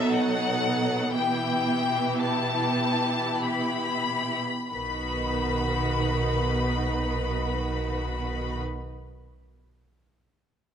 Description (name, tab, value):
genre	classical, slow romantic movement for string orchestra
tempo	44-62 BPM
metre	3/4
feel	rubato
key	unclear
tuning	A4 = 440 Hz
part	rich chamber violin section	melody	0.0-8.6 s	E5 to B5	-29 LUFS	left 5 dB	none
part	rich chamber violin section	second line	0.0-8.6 s	D#4 to B4	-32 LUFS	left 2 dB	none
part	rich studio viola section	accompaniment	0.0-8.6 s	D#3 to D#4	-31 LUFS	right 4 dB	none
part	rich studio cello section	bass	0.0-8.6 s	B2	-32 LUFS	right 3 dB	none
part	rich studio double bass section	bass	4.7-8.6 s	B1	-30 LUFS	right 2 dB	none
room	light reverb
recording	close, detailed microphones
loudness	-24 LUFS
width	side -8 dB against mid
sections	0.0-4.7 A section; 4.7-8.3 B section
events	slowing down 0.0-4.7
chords	0.0 B7; 1.1 Em/B; 4.7 B